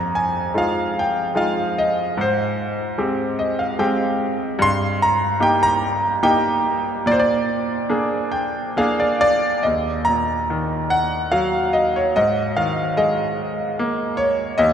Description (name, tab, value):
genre	classical, lyrical solo piano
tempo	73 BPM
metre	3/4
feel	rubato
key	Eb minor from 9.6 s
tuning	A4 = 443 Hz
part	bright concert grand piano	solo	0.0-14.7 s	Eb2 to C6	-18 LUFS	equal	none
room	wet cathedral reverb, RT60 6.5 s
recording	recorded in a church or concert hall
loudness	-18 LUFS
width	side -8 dB against mid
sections	0.0-9.6 A section; 9.6-14.7 B section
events	grand piano fill 3.0-4.6, 7.9-9.6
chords	0.0 Fm7; 2.2 Abmaj7; 4.6 Eb/G; 7.1 Bb7; 9.6 Ebm; 12.2 Absus2